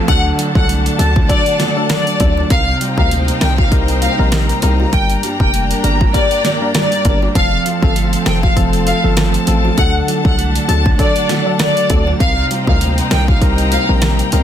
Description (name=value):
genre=dancehall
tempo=99 BPM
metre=4/4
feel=swing 56% on 16ths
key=unclear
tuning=A4 = 440 Hz
part: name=percussive organ stab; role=accompaniment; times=0.0-14.4 s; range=F3 to Bb4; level=-23 LUFS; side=left 3 dB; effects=chorus
part: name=rich studio string section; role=sustained chords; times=0.0-14.4 s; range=C4 to Bb5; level=-23 LUFS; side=left 2 dB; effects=sidechain pumping
part: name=clean electric guitar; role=arpeggios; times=0.0-14.4 s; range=F2 to Eb4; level=-21 LUFS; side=right 4 dB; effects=spring reverb
part: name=downlifter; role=sound effects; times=0.0-2.5 s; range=none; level=-34 LUFS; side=equal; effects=none
part: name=rich studio violin section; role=melody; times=0.1-13.8 s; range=D5 to Bb5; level=-18 LUFS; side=left 1 dB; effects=digital delay
part: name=hard-hitting 808-style bass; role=bass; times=0.1-14.4 s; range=F1 to D2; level=-17 LUFS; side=equal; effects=none
part: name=pop drum kit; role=drums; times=0.1-14.4 s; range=hi-hat, kick drum, rim click, snare drum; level=-16 LUFS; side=equal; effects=none
part: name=bongos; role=percussion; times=0.4-14.4 s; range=none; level=-30 LUFS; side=left 4 dB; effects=none
room=digital ambience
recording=dense, heavily limited modern master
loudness=-12 LUFS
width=side -10 dB against mid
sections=0.0-14.4 A section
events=none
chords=0.1 D; 2.5 Cm7; 4.9 Gm; 7.4 F; 9.8 D; 12.2 Cm7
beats=| 0.08 0.69 1.29 1.90 | 2.51 3.11 3.72 4.33 | 4.93 5.54 6.14 6.75 | 7.36 7.96 8.57 9.17 | 9.78 10.38 10.99 11.60 | 12.20 12.81 13.42 14.02